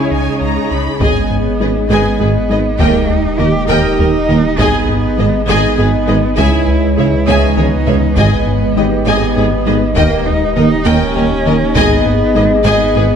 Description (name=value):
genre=cinematic, hybrid orchestral and electronic film score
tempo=67 BPM (dotted quarters)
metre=6/8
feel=straight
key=G# harmonic minor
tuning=A4 = 440 Hz
part: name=rich cello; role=melody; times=0.0-13.2 s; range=A#3 to G4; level=-20 LUFS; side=right 4 dB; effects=ping-pong delay
part: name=rich symphonic violin section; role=melody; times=0.0-13.0 s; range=A#4 to B5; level=-22 LUFS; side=left 3 dB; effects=none
part: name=rich symphonic viola section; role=accompaniment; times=0.0-13.0 s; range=G#4 to C#5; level=-22 LUFS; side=equal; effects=none
part: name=ethereal airy pad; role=sustained chords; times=0.0-13.2 s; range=E3 to A#5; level=-20 LUFS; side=right 1 dB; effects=ensemble chorus, built-in reverb
part: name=mellow French horn section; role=sustained chords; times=0.0-13.2 s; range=G#3 to D#5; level=-20 LUFS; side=left 3 dB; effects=none
part: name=clear studio cello section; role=bass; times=0.0-13.0 s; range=D#2 to C#3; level=-23 LUFS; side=right 4 dB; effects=none
part: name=harp-like synth pluck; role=arpeggios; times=0.1-13.1 s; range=C#3 to D#4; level=-24 LUFS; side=equal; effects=none
part: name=rubbery square bass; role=riff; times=0.1-13.1 s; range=C#2 to G#3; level=-19 LUFS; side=left 3 dB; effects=none
part: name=rich symphonic violin section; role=second line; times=1.0-13.0 s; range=G4 to E5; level=-23 LUFS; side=left 1 dB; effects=none
part: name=mellow tuba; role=bass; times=1.0-13.1 s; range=G#1 to D#2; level=-22 LUFS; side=right 5 dB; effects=none
part: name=pure sine sub bass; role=bass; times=1.0-13.2 s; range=D#1 to C#2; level=-21 LUFS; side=equal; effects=none
part: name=warm symphonic double bass section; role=bass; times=1.0-13.0 s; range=G#1 to D#2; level=-22 LUFS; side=right 5 dB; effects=none
part: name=taiko ensemble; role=drums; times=1.0-12.3 s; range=none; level=-20 LUFS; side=equal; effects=none
part: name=clear grand piano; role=texture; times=1.9-13.2 s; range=G3 to C#5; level=-27 LUFS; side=equal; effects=none
room=moderate scoring stage reverb, RT60 1.7 s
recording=none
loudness=-10 LUFS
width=side -7 dB against mid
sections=0.0-1.0 A section; 1.0-13.2 B section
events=drum fill 7.3-8.2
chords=0.0 C#5; 1.0 G#m; 2.8 D#; 4.6 G#m; 6.4 C#m; 8.2 G#m; 10.0 D#; 11.8 G#m